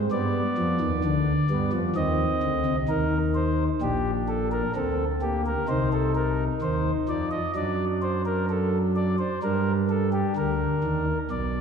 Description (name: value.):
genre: classical, baroque-style 3-part fugue for pipe organ.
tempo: 64 BPM.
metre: 4/4.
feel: straight.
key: unclear.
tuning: A4 = 441 Hz.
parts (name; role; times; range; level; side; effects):
chamber organ, principal; solo; 0.0-11.6 s; Bb1 to Eb5; -23 LUFS; equal; none.
room: wet scoring stage reverb, RT60 1.9 s.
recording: minimal, uncompressed stereo recording.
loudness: -23 LUFS.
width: side -6 dB against mid.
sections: 0.0-11.3 A section.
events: none.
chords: 0.1 G; 2.0 Cm; 3.8 Gm/Bb; 5.7 Cm; 7.6 D/F#; 9.4 Gm.